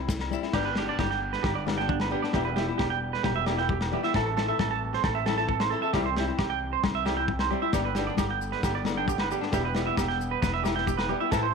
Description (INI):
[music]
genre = highlife guitar band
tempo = 134 BPM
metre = 4/4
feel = straight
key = G major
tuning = A4 = 441 Hz
[part]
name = flamenco guitar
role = accompaniment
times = 0.0-11.5 s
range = E3 to A4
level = -33 LUFS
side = left 14 dB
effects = none
[part]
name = warm woodwind section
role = sustained chords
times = 0.0-11.5 s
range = D3 to E4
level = -39 LUFS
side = left 1 dB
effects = none
[part]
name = upright bass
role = bass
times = 0.0-11.5 s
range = E1 to C2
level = -33 LUFS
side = left 1 dB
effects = none
[part]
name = crunchy breakbeat drum kit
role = drums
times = 0.1-11.4 s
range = crash cymbal, kick drum, snare drum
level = -31 LUFS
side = left 1 dB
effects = none
[part]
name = congas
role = percussion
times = 0.1-11.4 s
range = none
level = -38 LUFS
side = left 15 dB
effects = none
[part]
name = maracas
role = percussion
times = 0.1-0.4, 7.7-11.4 s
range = none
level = -45 LUFS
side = left 20 dB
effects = none
[part]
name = agogo bells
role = percussion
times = 0.2-11.4 s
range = none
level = -38 LUFS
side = left 16 dB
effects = none
[part]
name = clean electric guitar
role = arpeggios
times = 0.5-11.5 s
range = D4 to A5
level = -29 LUFS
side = right 13 dB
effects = spring reverb, slapback echo
[sound]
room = light reverb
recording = 1960s-style stereo with parts hard left and right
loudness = -25 LUFS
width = side -5 dB against mid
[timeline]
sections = 0.6-11.5 A section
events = none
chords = 0.0 C; 0.6 G; 2.4 Em; 4.1 Am; 5.9 C; 7.7 G; 9.5 Em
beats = 0.10 | 0.55 1.00 1.45 1.90 | 2.35 2.80 3.25 3.70 | 4.15 4.59 5.04 5.49 | 5.94 6.39 6.84 7.29 | 7.74 8.19 8.63 9.08 | 9.53 9.98 10.43 10.88 | 11.33